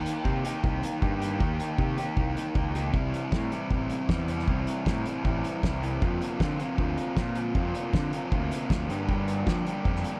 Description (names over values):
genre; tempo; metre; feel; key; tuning
indie rock; 156 BPM; 4/4; straight; unclear; A4 = 441 Hz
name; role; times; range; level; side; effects
raw garage guitar; riff; 0.0-10.2 s; F2 to G4; -33 LUFS; equal; overdrive
fuzz picked electric bass; bass; 0.0-10.0 s; A1 to F3; -34 LUFS; equal; overdrive
loose indie drum kit; drums; 0.1-10.1 s; hi-hat, kick drum, snare drum; -32 LUFS; equal; none
room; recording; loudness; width
small room ambience; none; -28 LUFS; mono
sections
0.0-10.2 A section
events
none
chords
0.0 Eb; 2.9 C; 6.0 Fsus4; 8.9 Gm7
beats
0.26 0.64 1.02 | 1.41 1.79 2.17 2.56 | 2.94 3.33 3.71 4.09 | 4.48 4.86 5.25 5.63 | 6.01 6.40 6.78 7.17 | 7.55 7.93 8.32 8.70 | 9.09 9.47 9.85